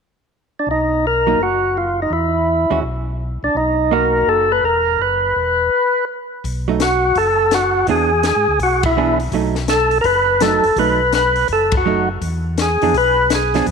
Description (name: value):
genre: soul jazz organ trio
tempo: 166 BPM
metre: 4/4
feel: swing 65% on 8ths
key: B major, B mixolydian from 6.4 s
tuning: A4 = 440 Hz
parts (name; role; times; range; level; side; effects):
- percussive tonewheel organ; melody; 0.6-13.7 s; D4 to B4; -15 LUFS; equal; slow rotary speaker, overdrive
- mellow tonewheel organ; bass; 0.7-13.7 s; E1 to G#2; -23 LUFS; equal; chorus vibrato, slow rotary speaker
- hollow-body jazz guitar; accompaniment; 1.3-4.5, 6.7-13.7 s; E3 to G#4; -22 LUFS; right 9 dB; none
- compact cocktail drum kit; drums; 6.4-13.7 s; hi-hat, kick drum, ride cymbal, snare drum; -24 LUFS; left 5 dB; none
room: moderate echo chamber reverb, RT60 1.9 s, small room ambience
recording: 1960s-style stereo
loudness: -14 LUFS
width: side -6 dB against mid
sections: 0.7-6.4 A section; 6.4-13.7 B section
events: stop 5.7-6.4; band accent 8.8, 11.7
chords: 0.0 N.C.; 0.7 Bmaj7; 2.1 E5; 3.6 Bmaj7; 5.0 F#7sus4; 6.4 B7(no3); 7.9 E7; 9.3 B7; 12.2 E7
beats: 0.30 | 0.67 1.03 1.39 1.75 | 2.11 2.47 2.83 3.19 | 3.55 3.91 4.27 4.63 | 5.00 5.36 5.72 6.08 | 6.44 6.80 7.16 7.52 | 7.88 8.24 8.61 8.97 | 9.33 9.69 10.05 10.41 | 10.77 11.13 11.49 11.86 | 12.22 12.58 12.94 13.30 | 13.66